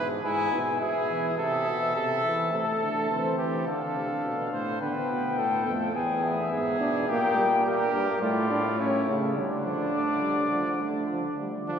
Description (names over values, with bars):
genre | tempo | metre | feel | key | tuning
classical, imitative canzona for brass ensemble | 105 BPM | 4/4 | straight | D minor | A4 = 440 Hz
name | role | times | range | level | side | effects
mellow cornet | melody | 0.0-11.8 s | Bb4 to G#5 | -29 LUFS | left 3 dB | none
clear trumpet | second line | 0.0-11.8 s | D4 to C5 | -30 LUFS | right 1 dB | none
bright bass trombone | bass | 0.0-11.8 s | E2 to E3 | -31 LUFS | right 1 dB | none
warm trombone | accompaniment | 2.5-11.8 s | F3 to D4 | -31 LUFS | right 1 dB | none
room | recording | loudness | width
wet cathedral reverb, RT60 5.4 s | heard from further back in the room | -24 LUFS | side -7 dB against mid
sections
0.0-2.5 A section; 2.5-11.7 B section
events
none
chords
0.2 E/G#; 1.4 Am; 2.5 Am/C; 3.7 Dm; 6.0 E; 7.1 Gm; 8.2 Dm/A; 8.8 A; 9.4 Dm